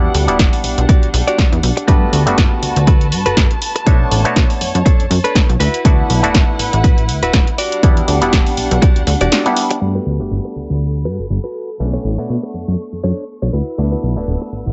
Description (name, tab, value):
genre	filtered disco house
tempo	121 BPM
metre	4/4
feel	swing 56% on 16ths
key	unclear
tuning	A4 = 436 Hz
part	auto-wah clav	accompaniment	0.0-14.7 s	G3 to F#5	-24 LUFS	equal	phaser, sidechain pumping, low-pass filter
part	muted symphonic violin section	sustained chords	0.0-14.7 s	G3 to E6	-27 LUFS	equal	sidechain pumping, low-pass filter
part	direct-recorded clean electric guitar	riff	0.0-14.6 s	D4 to D5	-24 LUFS	equal	sidechain pumping, low-pass filter
part	plucky analog bass	bass	0.0-14.7 s	D1 to B2	-20 LUFS	equal	sidechain pumping, low-pass filter
part	punchy analog drum machine	drums	0.1-9.8 s	hi-hat, snare drum	-22 LUFS	equal	sidechain pumping on hats
part	electronic kick drum	drums	0.4-8.9 s	none	-14 LUFS	equal	none
room	light reverb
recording	nothing above 8.0 kHz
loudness	-15 LUFS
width	mono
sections	0.0-9.8 A section; 9.8-14.7 B section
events	kick drops out 9.3-9.8; band accent 9.3; filter sweep 9.8-14.7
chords	0.0 Em9; 1.9 Gmaj9; 3.9 Bm9; 5.6 D69; 7.6 Em9; 9.8 Gmaj9; 11.8 Bm9; 13.5 D69